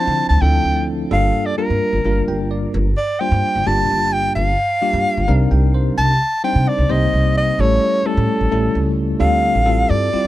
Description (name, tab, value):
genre	electric jazz fusion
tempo	259 BPM (eighths)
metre	7/8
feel	straight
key	unclear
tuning	A4 = 441 Hz
part	breathy soprano saxophone	melody	0.0-10.3 s	A4 to A5	-19 LUFS	right 1 dB	none
part	bell-like tine electric piano	accompaniment	0.0-10.3 s	F3 to G5	-21 LUFS	left 2 dB	medium stereo tremolo
part	upright bass	bass	0.1-10.3 s	G1 to D3	-18 LUFS	equal	none
room	light reverb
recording	dry, close 1970s-style studio recording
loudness	-14 LUFS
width	side -15 dB against mid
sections	0.0-9.2 A section; 9.2-10.3 B section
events	tine electric piano fill 2.0-2.7, 5.3-6.0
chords	0.0 Dm9; 1.1 Gm7; 5.3 Cm9; 7.6 A7; 9.2 Dm11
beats	0.18 0.42 0.65 0.88 | 1.11 1.34 1.57 1.81 2.04 2.27 2.50 | 2.73 2.96 3.20 3.43 3.66 3.89 4.12 | 4.35 4.58 4.82 5.05 5.28 5.51 5.74 | 5.97 6.21 6.44 6.67 6.90 7.13 7.36 | 7.59 7.82 8.05 8.29 8.52 8.75 8.98 | 9.21 9.44 9.67 9.90 10.13